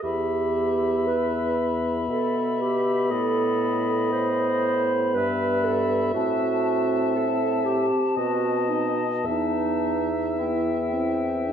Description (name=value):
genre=classical, slow romantic movement for wind quintet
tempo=59 BPM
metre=3/4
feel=uneven beats, rubato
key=E minor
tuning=A4 = 438 Hz
part: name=mellow hollow silver concert flute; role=melody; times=0.0-11.5 s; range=G5 to B5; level=-30 LUFS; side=left 6 dB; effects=none
part: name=warm oboe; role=second line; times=0.0-11.5 s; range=D#5 to E5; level=-30 LUFS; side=left 4 dB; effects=none
part: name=mellow clarinet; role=accompaniment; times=0.0-11.5 s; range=D#4 to C5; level=-26 LUFS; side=right 5 dB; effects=none
part: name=mellow bassoon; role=bass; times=0.0-11.5 s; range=E2 to B2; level=-29 LUFS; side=right 1 dB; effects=none
part: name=warm French horn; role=accompaniment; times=0.1-11.5 s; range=B3 to D4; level=-30 LUFS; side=left 2 dB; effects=none
room=moderate recital hall reverb, RT60 1.5 s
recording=dark, warm production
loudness=-21 LUFS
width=side -8 dB against mid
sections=0.0-11.5 A section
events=none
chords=0.0 Em; 2.1 Emadd11/B; 3.1 B7/A; 5.2 Em/G; 6.2 F#m7b5/A; 8.2 B7; 9.3 Em